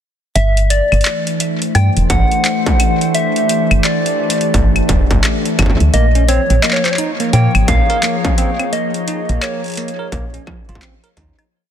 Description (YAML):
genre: IDM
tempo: 86 BPM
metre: 4/4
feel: swing 62% on 16ths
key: unclear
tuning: A4 = 439 Hz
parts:
  - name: soft struck synth lead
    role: melody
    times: 0.4-10.8 s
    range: C5 to G5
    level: -19 LUFS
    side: left 1 dB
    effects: chorus, tape echo
  - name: warbly tape-like pad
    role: sustained chords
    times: 0.6-11.5 s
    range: E3 to Db5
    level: -20 LUFS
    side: left 1 dB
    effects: chorus, built-in reverb
  - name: woody FM bass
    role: bass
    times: 0.4-11.3 s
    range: E1 to Bb2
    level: -13 LUFS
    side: equal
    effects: none
  - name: booming analog drum machine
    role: drums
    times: 0.4-11.5 s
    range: claves, handclaps, hi-hat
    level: -20 LUFS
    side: left 1 dB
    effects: none
  - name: electronic kick drum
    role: drums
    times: 2.1-11.3 s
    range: none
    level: -17 LUFS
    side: equal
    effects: distortion
  - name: bell-like tine electric piano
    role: arpeggios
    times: 5.9-11.4 s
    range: F3 to Bb4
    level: -23 LUFS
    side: right 6 dB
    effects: tape echo
room: little or no reverb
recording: dense, heavily limited modern master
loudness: -12 LUFS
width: side -9 dB against mid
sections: 0.4-11.5 groove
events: fade-out 7.8-11.5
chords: 0.4 G5; 5.9 Bbm